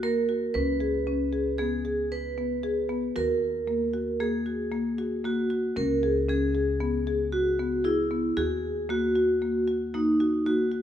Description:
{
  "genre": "contemporary instrumental, chamber music in an uneven meter",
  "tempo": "115 BPM",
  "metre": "5/4",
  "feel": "straight",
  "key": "unclear",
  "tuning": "A4 = 440 Hz",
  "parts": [
    { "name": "vibraphone with medium hard mallets", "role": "second line", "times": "0.0-10.8 s", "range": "D#4 to B4", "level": "-27 LUFS", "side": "right 3 dB", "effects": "none" },
    { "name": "marimba with soft mallets", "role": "arpeggios", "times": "0.0-10.8 s", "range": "A#3 to G#4", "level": "-28 LUFS", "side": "left 4 dB", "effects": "none" },
    { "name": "upright bass", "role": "bass", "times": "0.0-10.8 s", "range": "C#2 to D#2", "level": "-36 LUFS", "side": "equal", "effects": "none" }
  ],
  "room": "moderate recital hall reverb, RT60 1.5 s",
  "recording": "minimal, uncompressed stereo recording",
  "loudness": "-24 LUFS",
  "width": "side -10 dB against mid",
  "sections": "0.0-10.8 A section",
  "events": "none",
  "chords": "0.0 D#m; 0.5 C#5; 3.2 D#m; 5.8 C#m7; 8.4 D#m"
}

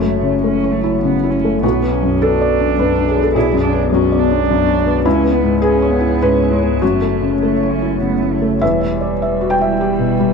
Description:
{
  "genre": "neoclassical piano and strings",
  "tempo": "102 BPM",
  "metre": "3/4",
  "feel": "rubato",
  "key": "B dorian",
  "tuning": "A4 = 441 Hz",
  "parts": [
    { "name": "muted cello", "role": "second line", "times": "0.0-10.3 s", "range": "G3 to E4", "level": "-21 LUFS", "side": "right 12 dB", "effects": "none" },
    { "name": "felt-muted upright piano", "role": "accompaniment", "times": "0.0-10.3 s", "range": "B1 to G5", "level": "-15 LUFS", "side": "left 2 dB", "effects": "none" },
    { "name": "glassy FM pad", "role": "sustained chords", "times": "0.0-10.3 s", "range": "G3 to D5", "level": "-23 LUFS", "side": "left 2 dB", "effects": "ensemble chorus, built-in reverb, phaser" },
    { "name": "saturated sub bass", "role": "bass", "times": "0.0-10.3 s", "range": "E1 to C#2", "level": "-24 LUFS", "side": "equal", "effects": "none" }
  ],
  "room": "moderate echo chamber reverb, RT60 2.0 s, small room reverb",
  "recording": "none",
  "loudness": "-13 LUFS",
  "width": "side -5 dB against mid",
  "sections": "0.0-8.6 A section; 8.6-10.3 B section",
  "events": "none",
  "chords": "0.0 F#m7; 1.6 Bm; 5.1 C#m7; 6.8 F#m7; 8.6 Emadd9"
}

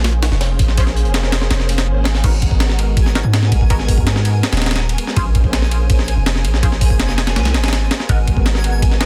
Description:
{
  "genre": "drum and bass, jungle",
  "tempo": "164 BPM",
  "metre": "4/4",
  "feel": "straight",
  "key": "unclear",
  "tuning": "A4 = 440 Hz",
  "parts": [
    { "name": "soft string machine", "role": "sustained chords", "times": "0.0-9.0 s", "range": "G#3 to B#4", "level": "-28 LUFS", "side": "equal", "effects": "ensemble chorus" },
    { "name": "long sustained 808-style bass", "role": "bass", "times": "0.0-9.1 s", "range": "D#1 to G#2", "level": "-19 LUFS", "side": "equal", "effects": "none" },
    { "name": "breakbeat sampler-style drum kit", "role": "drums", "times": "0.0-9.1 s", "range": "crash cymbal, hi-hat, kick drum, ride cymbal, snare drum", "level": "-19 LUFS", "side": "equal", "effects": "small room ambience" },
    { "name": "crunchy breakbeat drum kit", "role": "drums", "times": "0.1-2.2 s", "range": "hi-hat, snare drum", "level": "-32 LUFS", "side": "equal", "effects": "high-pass filter on hats, small room ambience, high-pass filter on snare, high-pass filter on room" },
    { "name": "band-passed chord stab", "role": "stabs", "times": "0.8-9.1 s", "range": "B3 to B#4", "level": "-32 LUFS", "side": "equal", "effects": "phaser, ensemble chorus, dub echo" },
    { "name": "twinkling granular texture", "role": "texture", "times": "2.5-9.1 s", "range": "G#5", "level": "-33 LUFS", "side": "equal", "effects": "built-in reverb" }
  ],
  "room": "little or no reverb",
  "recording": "dense, heavily limited modern master",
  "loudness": "-16 LUFS",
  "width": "mono",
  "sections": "0.0-2.2 A section; 2.2-9.1 A section",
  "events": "drop 0.0-2.2, 2.2-9.1",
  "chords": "0.0 A#m9; 2.2 G#m9; 5.2 A#m9; 8.1 G#m9"
}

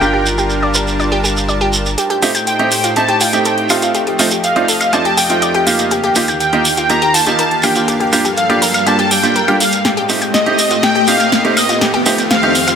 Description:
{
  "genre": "progressive house",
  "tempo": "122 BPM",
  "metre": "4/4",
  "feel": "straight",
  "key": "unclear",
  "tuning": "A4 = 440 Hz",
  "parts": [
    { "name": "wide unison lead", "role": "melody", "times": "0.0-12.8 s", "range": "Eb5 to Bb5", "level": "-17 LUFS", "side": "equal", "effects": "lush chorus, dub echo" },
    { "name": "soft synth bell", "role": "second line", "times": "0.0-12.8 s", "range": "Eb5 to Bb5", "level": "-24 LUFS", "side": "left 1 dB", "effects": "none" },
    { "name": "supersaw pad", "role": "sustained chords", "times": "0.0-12.8 s", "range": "Eb2 to A5", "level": "-20 LUFS", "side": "equal", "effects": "none" },
    { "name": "analog pluck", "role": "arpeggios", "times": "0.0-12.8 s", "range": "F4 to G5", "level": "-20 LUFS", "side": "left 1 dB", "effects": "chorus, dub echo" },
    { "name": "clear baby grand piano", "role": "stabs", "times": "0.0-12.5 s", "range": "A3 to Bb4", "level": "-18 LUFS", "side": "right 3 dB", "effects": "dub echo" },
    { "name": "round analog bass", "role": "bass", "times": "0.0-2.0 s", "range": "G1", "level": "-21 LUFS", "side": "left 1 dB", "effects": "none" },
    { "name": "shekere", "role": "percussion", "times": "0.0-12.8 s", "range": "none", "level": "-20 LUFS", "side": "right 3 dB", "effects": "none" },
    { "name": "deep house drum kit", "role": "drums", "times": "2.0-12.8 s", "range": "hi-hat, snare drum, woodblock", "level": "-18 LUFS", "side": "left 1 dB", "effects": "overdrive, studio ambience" },
    { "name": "riser", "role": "sound effects", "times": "4.5-12.8 s", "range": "none", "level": "-22 LUFS", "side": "left 2 dB", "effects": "none" }
  ],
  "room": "moderate lush hall reverb, RT60 2.0 s, digital ambience",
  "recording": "none",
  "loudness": "-11 LUFS",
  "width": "side -7 dB against mid",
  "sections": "0.0-2.0 A section; 2.0-12.8 B section",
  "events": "filter sweep on grand piano 0.0-2.0; build-up 2.0-12.8; riser 4.5-12.8; drum fill 9.8-12.8",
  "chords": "0.0 Gm7; 2.0 Am7b5; 3.9 F7; 5.9 Ebadd9; 7.9 Gm7; 9.8 Am7b5; 11.8 F7"
}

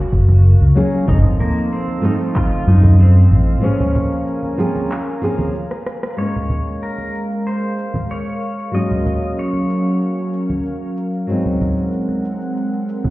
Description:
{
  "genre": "sunset chillout",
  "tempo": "94 BPM",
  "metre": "4/4",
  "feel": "straight",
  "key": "unclear",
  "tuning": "A4 = 439 Hz",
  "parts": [
    { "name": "pedal steel guitar", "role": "melody", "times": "0.0-10.9 s", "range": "Bb3 to Eb5", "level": "-26 LUFS", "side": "equal", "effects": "digital delay" },
    { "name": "airy breathy pad", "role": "sustained chords", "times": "0.0-13.1 s", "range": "Gb3 to Db6", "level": "-24 LUFS", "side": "right 1 dB", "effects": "chorus" },
    { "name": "mellow fretless electric bass", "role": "bass", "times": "0.1-3.6 s", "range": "Gb1 to Gb2", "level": "-9 LUFS", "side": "equal", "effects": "tube saturation" },
    { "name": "electronic kick drum", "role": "drums", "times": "0.1-2.5 s", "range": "none", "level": "-20 LUFS", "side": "equal", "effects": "overdrive" },
    { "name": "electronic shaker, handclaps and rim click", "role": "drums", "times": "0.1-13.1 s", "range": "none", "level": "-28 LUFS", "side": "equal", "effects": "overdrive" },
    { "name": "congas", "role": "percussion", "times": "0.3-13.1 s", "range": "none", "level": "-21 LUFS", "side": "right 1 dB", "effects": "none" },
    { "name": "nylon-string guitar", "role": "accompaniment", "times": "0.8-13.1 s", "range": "F3 to C5", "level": "-21 LUFS", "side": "equal", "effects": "auto-pan, digital delay" }
  ],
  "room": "light reverb",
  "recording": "heard muffled through a wall, stone room reverb, EQ",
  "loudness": "-15 LUFS",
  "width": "side -18 dB against mid",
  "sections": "0.0-6.2 A section; 6.2-13.1 B section",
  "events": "filter sweep on nylon-string guitar 0.0-6.2; break 3.6-6.2; drum fill 5.7-6.2; band accent 6.0-6.3",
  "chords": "0.0 Gbmaj7; 1.1 F7/Gb; 3.6 Bbm7; 8.7 Gbmaj7; 11.3 Ab9"
}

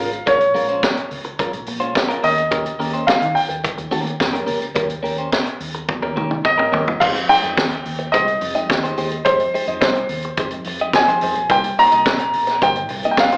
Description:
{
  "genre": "disco",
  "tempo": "107 BPM",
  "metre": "4/4",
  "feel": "straight",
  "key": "F minor",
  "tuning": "A4 = 444 Hz",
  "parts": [
    { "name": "warm baby grand piano", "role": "melody", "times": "0.0-13.4 s", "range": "C5 to Bb5", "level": "-20 LUFS", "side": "equal", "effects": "slapback echo" },
    { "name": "direct-recorded clean electric guitar", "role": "accompaniment", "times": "0.0-13.4 s", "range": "Ab3 to Eb5", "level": "-26 LUFS", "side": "equal", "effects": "phaser, slapback echo" },
    { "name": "vintage muted fingered electric bass", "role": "bass", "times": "0.0-13.4 s", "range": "G1 to F3", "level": "-33 LUFS", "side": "equal", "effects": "none" },
    { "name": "vintage drum kit", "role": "drums", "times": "0.1-13.4 s", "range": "crash cymbal, hi-hat, kick drum, snare drum, toms", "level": "-24 LUFS", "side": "equal", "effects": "none" }
  ],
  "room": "light reverb",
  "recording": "live gig heard through the venue's PA, club reverb, AM radio sound",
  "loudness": "-19 LUFS",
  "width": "mono",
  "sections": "0.0-7.0 A section; 7.0-13.4 B section",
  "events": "drum fill 5.9-7.0",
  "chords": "0.0 Bbm7; 2.2 Eb7; 7.0 Fm9; 11.5 Cm7"
}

